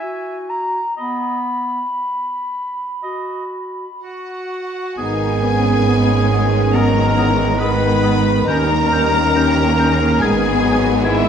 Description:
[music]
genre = classical, slow romantic movement for symphony orchestra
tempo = 58-73 BPM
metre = 4/4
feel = rubato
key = B major, G# minor from 5.0 s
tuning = A4 = 440 Hz
[part]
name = bright clarinet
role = second line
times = 0.0-11.2 s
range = B3 to F#4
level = -27 LUFS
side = equal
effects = none
[part]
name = clear oboe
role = second line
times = 0.0-11.3 s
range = E4 to E5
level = -26 LUFS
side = equal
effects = none
[part]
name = mellow concert flute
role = second line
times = 0.0-11.1 s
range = G#5 to G#6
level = -25 LUFS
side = equal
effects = none
[part]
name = bright symphonic violin section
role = melody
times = 4.0-11.3 s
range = E5 to B5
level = -24 LUFS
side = left 6 dB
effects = none
[part]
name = mellow trumpet section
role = stabs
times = 4.0-11.3 s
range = E4 to B4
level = -22 LUFS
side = right 1 dB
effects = none
[part]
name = warm symphonic violin section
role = second line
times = 5.0-11.3 s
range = B3 to G#4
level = -24 LUFS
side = left 3 dB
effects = none
[part]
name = clear symphonic viola section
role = accompaniment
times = 5.0-11.3 s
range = D#3 to B3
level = -22 LUFS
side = right 2 dB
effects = none
[part]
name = dark French horn section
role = sustained chords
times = 5.0-11.3 s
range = B3 to D#4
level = -22 LUFS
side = left 6 dB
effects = none
[part]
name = warm trombone section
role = sustained chords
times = 5.0-11.3 s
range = G2 to D#3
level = -25 LUFS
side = right 3 dB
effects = none
[part]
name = rich symphonic cello section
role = bass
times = 5.0-11.3 s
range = D#2 to G#2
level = -22 LUFS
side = right 2 dB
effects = none
[part]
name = rich symphonic double bass section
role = bass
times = 5.0-11.3 s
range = G#1 to D#2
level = -21 LUFS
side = right 3 dB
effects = none
[sound]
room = wet concert hall reverb, RT60 1.9 s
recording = dark, warm production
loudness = -15 LUFS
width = side -8 dB against mid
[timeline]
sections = 0.0-5.0 A section; 5.0-11.3 B section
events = none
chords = 0.0 F#7; 1.0 B5; 5.0 G#m; 8.5 D#7; 10.2 G#m

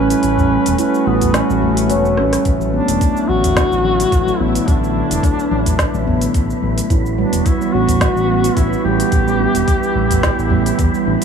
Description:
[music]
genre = organic downtempo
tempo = 108 BPM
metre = 4/4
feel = swing 55% on 16ths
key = unclear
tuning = A4 = 440 Hz
[part]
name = mellow duduk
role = melody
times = 0.0-11.0 s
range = B3 to G4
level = -20 LUFS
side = left 1 dB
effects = tape echo
[part]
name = warbly tape-like pad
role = sustained chords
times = 0.0-11.2 s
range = D3 to B4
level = -22 LUFS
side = right 1 dB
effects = chorus, built-in reverb, sidechain pumping
[part]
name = steel tongue drum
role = arpeggios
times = 0.0-11.2 s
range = F#3 to C#5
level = -19 LUFS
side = right 2 dB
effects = tape echo
[part]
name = smooth synth bass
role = bass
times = 0.0-11.2 s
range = E1 to E2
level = -20 LUFS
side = equal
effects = sidechain pumping
[part]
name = wind-like tuned noise texture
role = texture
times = 0.0-11.2 s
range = B4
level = -31 LUFS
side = right 2 dB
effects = built-in reverb
[part]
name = organic electronic drum kit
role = drums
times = 0.1-11.2 s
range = hi-hat, rim click, shaker, snare drum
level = -23 LUFS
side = equal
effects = none
[part]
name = udu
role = percussion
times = 0.4-10.6 s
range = none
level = -22 LUFS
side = right 1 dB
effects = none
[part]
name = electronic kick drum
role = drums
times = 2.5-10.9 s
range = none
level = -16 LUFS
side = equal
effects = none
[sound]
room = light reverb, digital ambience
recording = small room ambience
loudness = -13 LUFS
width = side -7 dB against mid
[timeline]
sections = 0.0-11.2 A section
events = kick drops out 0.2-2.5; drum fill 2.2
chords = 0.0 A7; 2.5 D6; 6.9 Em

